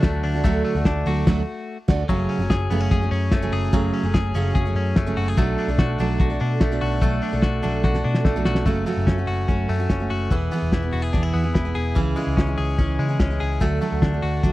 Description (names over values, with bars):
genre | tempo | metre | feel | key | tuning
jangly indie pop | 146 BPM | 4/4 | straight | F# minor | A4 = 440 Hz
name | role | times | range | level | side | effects
picked steel-string acoustic guitar | accompaniment | 0.0-14.5 s | F#2 to A4 | -25 LUFS | right 4 dB | none
direct-recorded clean electric guitar | arpeggios | 0.0-14.5 s | E3 to G#4 | -27 LUFS | left 4 dB | none
hollow-body short-scale picked electric bass | bass | 0.0-14.5 s | E1 to C#3 | -24 LUFS | left 1 dB | none
cloth-damped thuddy drum kit | drums | 0.0-14.5 s | crash cymbal, hi-hat, kick drum, ride cymbal, snare drum | -20 LUFS | left 1 dB | none
room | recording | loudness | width
little or no reverb | dry, close 1970s-style studio recording | -19 LUFS | side -17 dB against mid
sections
0.0-2.1 A section; 2.1-8.7 B section; 8.7-14.5 C section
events
band accent 1.3-2.1; drum fill 7.8-8.7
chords
0.0 D; 2.1 F#madd9; 5.4 Bm7; 8.7 F#m; 10.3 E; 12.0 C#m; 13.6 D